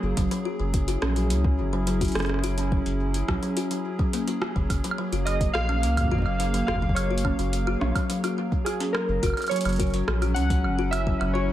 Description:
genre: IDM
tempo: 106 BPM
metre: 4/4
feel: straight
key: unclear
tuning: A4 = 439 Hz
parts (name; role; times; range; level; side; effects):
- hollow soft pad; sustained chords; 0.0-11.5 s; Gb3 to F5; -31 LUFS; right 1 dB; chorus, vintage 12-bit sampler grit
- warm sub bass; bass; 0.0-11.5 s; Gb1 to C#2; -26 LUFS; equal; none
- kalimba; arpeggios; 0.2-11.4 s; F#3 to F#4; -30 LUFS; left 3 dB; vintage 12-bit sampler grit, dub echo
- booming analog drum machine; drums; 0.2-11.3 s; hi-hat, rim click, woodblock; -32 LUFS; right 2 dB; tape echo
- electronic kick drum; drums; 0.2-11.2 s; none; -27 LUFS; equal; none
- warbly lo-fi synth keys; melody; 5.3-11.5 s; Ab4 to F#5; -30 LUFS; right 1 dB; chorus, tape echo
room: light reverb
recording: echo-heavy mix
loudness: -23 LUFS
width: side -13 dB against mid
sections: 0.0-11.5 A section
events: none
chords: 0.2 E69/F#; 4.7 Gbmaj9; 9.2 E69/F#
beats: | 0.17 0.74 1.30 1.87 | 2.44 3.00 3.57 4.13 | 4.70 5.27 5.83 6.40 | 6.96 7.53 8.10 8.66 | 9.23 9.79 10.36 10.93 | 11.49

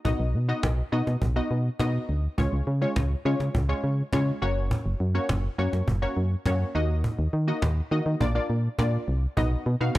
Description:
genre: dance-pop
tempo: 103 BPM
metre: 4/4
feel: straight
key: unclear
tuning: A4 = 439 Hz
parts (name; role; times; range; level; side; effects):
- punchy chord stab; accompaniment; 0.0-10.0 s; Ab3 to F5; -30 LUFS; left 1 dB; chorus
- solid FM bass; bass; 0.1-10.0 s; Gb1 to Eb3; -25 LUFS; equal; none
- cajon; drums; 0.1-10.0 s; none; -29 LUFS; equal; none
room: small room ambience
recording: dry, gritty hardware recording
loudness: -24 LUFS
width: side -17 dB against mid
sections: 0.0-9.4 A section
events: none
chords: 0.1 B; 2.4 Db; 4.4 Gb; 6.8 Ebm; 8.2 Bb; 9.4 B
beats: | 0.05 0.63 1.22 1.80 | 2.38 2.96 3.55 4.13 | 4.71 5.29 5.88 6.46 | 7.04 7.62 8.21 8.79 | 9.37 9.95

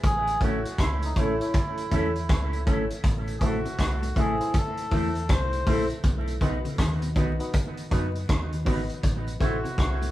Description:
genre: roots reggae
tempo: 80 BPM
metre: 4/4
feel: swing 63% on 16ths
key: unclear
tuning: A4 = 441 Hz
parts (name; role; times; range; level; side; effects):
- deep dub fingered electric bass; bass; 0.0-10.1 s; G#1 to F#2; -29 LUFS; equal; none
- vintage drum kit; drums; 0.0-10.1 s; hi-hat, kick drum, rim click; -26 LUFS; equal; none
- melodica; melody; 0.1-10.1 s; D#4 to C5; -30 LUFS; equal; none
- electric guitar with an envelope filter; accompaniment; 0.4-9.6 s; A3 to C5; -32 LUFS; right 2 dB; tape echo
- reed electric piano; stabs; 0.4-9.7 s; D#4 to E5; -34 LUFS; left 2 dB; tape echo
- electric guitar at the edge of break-up; arpeggios; 3.0-10.1 s; A2 to D#3; -37 LUFS; left 1 dB; none
room: wet studio reverb, RT60 0.6 s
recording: band playing live in one room, vinyl crackle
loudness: -23 LUFS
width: side -15 dB against mid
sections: 0.0-3.0 A section; 3.0-10.1 B section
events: none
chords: 0.0 A; 3.0 Am; 6.0 B; 9.0 Am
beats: | 0.04 0.79 1.54 2.29 | 3.04 3.79 4.54 5.29 | 6.04 6.79 7.54 8.29 | 9.03 9.78

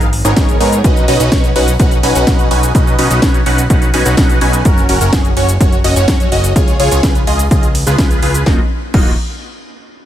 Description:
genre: EDM, festival progressive house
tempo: 126 BPM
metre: 4/4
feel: straight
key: unclear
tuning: A4 = 440 Hz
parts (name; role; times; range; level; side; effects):
- supersaw stab; riff; 0.0-9.1 s; Bb3 to Ab5; -15 LUFS; equal; phaser, sidechain pumping, ping-pong delay
- fat analog bass; bass; 0.0-9.2 s; Eb1 to Ab2; -16 LUFS; equal; sidechain pumping
- house drum kit; drums; 0.0-9.0 s; crash cymbal, hi-hat, ride cymbal, shaker, snare drum; -20 LUFS; equal; overdrive
- electronic kick drum; drums; 0.4-9.0 s; none; -13 LUFS; equal; overdrive
room: digital ambience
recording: none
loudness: -9 LUFS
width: side -11 dB against mid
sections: 0.0-8.5 A section; 8.5-10.1 B section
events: drop 0.0-8.5; band accent 8.0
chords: 0.0 Abmadd9; 0.8 Badd9; 4.7 Gb; 6.6 Db; 8.5 Ebmadd9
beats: 0.37 | 0.84 1.32 1.80 2.27 | 2.75 3.23 3.70 4.18 | 4.65 5.13 5.61 6.08 | 6.56 7.03 7.51 7.99 | 8.46 8.94

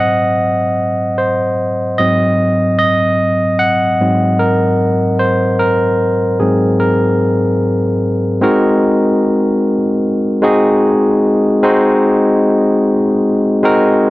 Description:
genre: soul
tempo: 75 BPM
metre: 4/4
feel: swing 54% on 16ths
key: unclear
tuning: A4 = 440 Hz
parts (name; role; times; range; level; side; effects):
- barky tine electric piano; solo; 0.0-14.1 s; Ab2 to Gb5; -11 LUFS; equal; overdrive
room: light reverb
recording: none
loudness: -11 LUFS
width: side -18 dB against mid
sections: 0.0-8.4 A section; 8.4-14.1 B section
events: tine electric piano solo 0.0-8.4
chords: 0.0 Ab7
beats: 0.39 1.20 | 2.00 2.80 3.61 4.41 | 5.21 6.02 6.82 7.62 | 8.43 9.23 10.03 10.84 | 11.64 12.44 13.24 14.05

